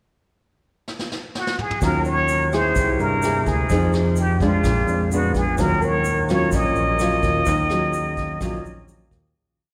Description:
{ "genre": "bossa nova", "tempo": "127 BPM", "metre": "4/4", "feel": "straight", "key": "Eb minor", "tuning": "A4 = 435 Hz", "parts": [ { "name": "vintage brush drum kit", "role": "drums", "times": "0.9-9.2 s", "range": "hi-hat, kick drum, rim click, snare drum, toms", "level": "-31 LUFS", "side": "equal", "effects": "none" }, { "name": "trumpet with plunger mute", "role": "melody", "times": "1.4-8.9 s", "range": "F4 to Eb5", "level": "-25 LUFS", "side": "equal", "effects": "none" }, { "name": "nylon-string guitar", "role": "accompaniment", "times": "1.8-9.3 s", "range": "Bb2 to Ab4", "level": "-25 LUFS", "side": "equal", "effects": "none" }, { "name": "fingered electric bass", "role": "bass", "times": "1.8-9.3 s", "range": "Bb1 to G2", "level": "-26 LUFS", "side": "equal", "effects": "none" }, { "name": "egg shaker", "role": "percussion", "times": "1.8-9.4 s", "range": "none", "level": "-43 LUFS", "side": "equal", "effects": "none" }, { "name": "bell-like tine electric piano", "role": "accompaniment", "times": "5.8-9.4 s", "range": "Ab4 to Bb4", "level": "-34 LUFS", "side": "equal", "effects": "none" } ], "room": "wet cathedral reverb, RT60 4.7 s", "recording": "recorded in a church or concert hall", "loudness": "-20 LUFS", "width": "mono", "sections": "0.0-1.8 pickup bar; 1.8-9.4 A section", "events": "drum fill 0.9-1.8; fade-out 7.5-9.4", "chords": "0.0 N.C.; 1.8 Ebm9; 2.8 C7b13; 3.7 Fm7; 4.6 Bb7b9; 5.6 Ebm9", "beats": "0.40 0.88 1.35 | 1.82 2.29 2.76 3.23 | 3.70 4.17 4.64 5.11 | 5.58 6.05 6.52 6.99 | 7.46 7.94 8.41 8.88" }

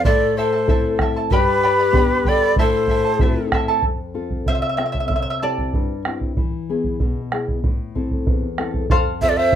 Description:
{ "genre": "andean folk, Andean ensemble", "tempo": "95 BPM", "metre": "2/4", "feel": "straight", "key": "A minor", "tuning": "A4 = 440 Hz", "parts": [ { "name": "breathy bright large quena", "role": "melody", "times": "0.0-3.5, 9.2-9.6 s", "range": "B4 to E5", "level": "-19 LUFS", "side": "right 3 dB", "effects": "none" }, { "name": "breathy reedy pan flute", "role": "second line", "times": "0.0-3.5, 9.2-9.6 s", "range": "G4 to C5", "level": "-21 LUFS", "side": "left 5 dB", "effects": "none" }, { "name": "charango", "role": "accompaniment", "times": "0.0-6.0, 8.9-9.6 s", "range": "E4 to B5", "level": "-23 LUFS", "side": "right 2 dB", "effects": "none" }, { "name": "nylon-string guitar", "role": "accompaniment", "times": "0.0-9.6 s", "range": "E2 to A4", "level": "-24 LUFS", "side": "left 4 dB", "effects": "none" }, { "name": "bombo", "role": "percussion", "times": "0.0-9.6 s", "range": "none", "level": "-21 LUFS", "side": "right 1 dB", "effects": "none" } ], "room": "wet small room reverb, RT60 0.5 s", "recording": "none", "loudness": "-17 LUFS", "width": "side -10 dB against mid", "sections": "0.0-3.8 A section; 3.8-8.9 B section", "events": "charango solo 3.8-8.9", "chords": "0.0 Am; 1.3 G; 2.6 Am; 3.8 F; 5.1 C; 6.4 E; 7.6 Am; 8.9 F", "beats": "| 0.04 0.68 | 1.31 1.94 | 2.57 3.20 | 3.84 4.47 | 5.10 5.74 | 6.37 7.00 | 7.64 8.27 | 8.90 9.54" }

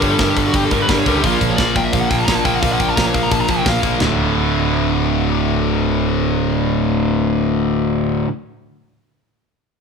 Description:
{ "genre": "heavy metal", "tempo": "173 BPM", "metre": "4/4", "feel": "straight", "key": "D minor", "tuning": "A4 = 441 Hz", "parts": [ { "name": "high-gain lead guitar", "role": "melody", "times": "0.0-3.8 s", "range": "F4 to Bb5", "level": "-21 LUFS", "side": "left 2 dB", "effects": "distortion" }, { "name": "distorted electric guitar", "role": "riff", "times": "0.0-8.3 s", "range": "D2 to Bb3", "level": "-19 LUFS", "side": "left 9 dB", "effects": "overdrive" }, { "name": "sludgy distorted guitar", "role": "riff", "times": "0.0-8.3 s", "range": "D2 to Bb3", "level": "-19 LUFS", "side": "right 7 dB", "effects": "overdrive" }, { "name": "fuzz picked electric bass", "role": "bass", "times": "0.0-8.2 s", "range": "D1 to C#2", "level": "-23 LUFS", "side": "equal", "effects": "overdrive" }, { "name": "tight metal drum kit", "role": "drums", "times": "0.0-4.1 s", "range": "hi-hat, kick drum, snare drum, toms", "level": "-20 LUFS", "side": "equal", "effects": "none" } ], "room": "light reverb", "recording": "band playing live in one room", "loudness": "-14 LUFS", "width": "side -5 dB against mid", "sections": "0.0-4.0 A section; 4.0-6.8 B section", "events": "lead electric guitar solo 0.0-4.0", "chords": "0.0 G5; 1.2 Bb5; 4.0 D5", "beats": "0.20 0.54 0.89 | 1.24 1.58 1.93 2.27 | 2.62 2.97 3.31 3.66 | 4.00 4.35 4.70 5.04 | 5.39 5.74 6.08 6.43" }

